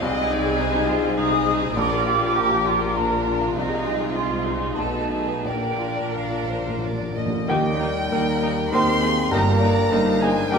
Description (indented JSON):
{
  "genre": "classical",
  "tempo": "85-106 BPM",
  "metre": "3/4",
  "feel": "rubato",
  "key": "Eb major",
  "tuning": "A4 = 435 Hz",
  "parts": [
    { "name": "clear grand piano", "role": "melody", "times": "0.0-10.6 s", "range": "G1 to C6", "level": "-24 LUFS", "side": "left 2 dB", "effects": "none" },
    { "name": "warm chamber violin section", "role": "melody", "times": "0.0-10.6 s", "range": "G4 to Eb5", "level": "-32 LUFS", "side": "left 2 dB", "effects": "none" },
    { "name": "large flute ensemble", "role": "second line", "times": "0.0-6.8 s", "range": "Eb5 to Eb6", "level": "-25 LUFS", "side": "right 2 dB", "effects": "none" },
    { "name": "rich chamber violin section", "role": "second line", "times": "0.0-10.6 s", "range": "F4 to C6", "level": "-29 LUFS", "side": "left 1 dB", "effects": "none" },
    { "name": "rich chamber viola section", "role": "accompaniment", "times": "0.0-10.6 s", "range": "Bb3 to G4", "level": "-31 LUFS", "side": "equal", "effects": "none" },
    { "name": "mellow French horn section", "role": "sustained chords", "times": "0.0-10.6 s", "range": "F3 to F4", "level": "-28 LUFS", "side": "left 2 dB", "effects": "none" },
    { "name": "dark studio double bass section", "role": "bass", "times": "0.0-10.6 s", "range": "G1 to Eb2", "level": "-32 LUFS", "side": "right 4 dB", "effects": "none" },
    { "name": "rich studio cello section", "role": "bass", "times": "0.0-10.6 s", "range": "Eb2 to C3", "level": "-30 LUFS", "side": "right 4 dB", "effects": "none" },
    { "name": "timpani", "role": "percussion", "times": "1.8-2.6, 5.5-7.4 s", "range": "Bb2", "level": "-32 LUFS", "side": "equal", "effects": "none" },
    { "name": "mellow tuba", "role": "bass", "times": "7.5-10.6 s", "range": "G1 to Eb2", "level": "-30 LUFS", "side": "right 4 dB", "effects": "none" }
  ],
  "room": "wet scoring stage reverb, RT60 1.5 s",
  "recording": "minimal, uncompressed stereo recording",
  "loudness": "-19 LUFS",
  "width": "side -5 dB against mid",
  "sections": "0.0-7.5 A section; 7.5-10.6 B section",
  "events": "timpani fill 5.5-7.5",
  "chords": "0.0 Ab/C; 1.8 Bb; 3.6 Ab/C; 4.8 B7; 5.5 Bb; 7.5 Eb; 9.3 Eb/G"
}